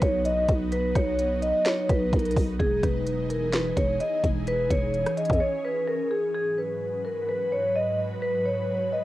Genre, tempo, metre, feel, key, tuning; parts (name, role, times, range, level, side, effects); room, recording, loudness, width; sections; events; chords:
hip hop, trap; 128 BPM; 4/4; half-time; G# minor; A4 = 439 Hz
vibraphone with medium mallets; melody; 0.0-9.0 s; G#4 to D#5; -26 LUFS; equal; low-pass filter
ethereal airy pad; sustained chords; 0.0-9.0 s; G#2 to B4; -32 LUFS; equal; ensemble chorus, built-in reverb, cassette tape
growling 808-style bass; bass; 0.0-5.4 s; E1 to E2; -28 LUFS; equal; tube saturation
trap drum kit; drums; 0.0-5.4 s; hi-hat, kick drum, rim click, snare drum; -27 LUFS; equal; cassette tape
light reverb, digital ambience; home recording on cassette; -23 LUFS; side -15 dB against mid
0.0-6.3 A section; 6.3-9.0 B section
break 5.4-6.3
0.0 B; 2.6 Emaj7; 6.3 G#m7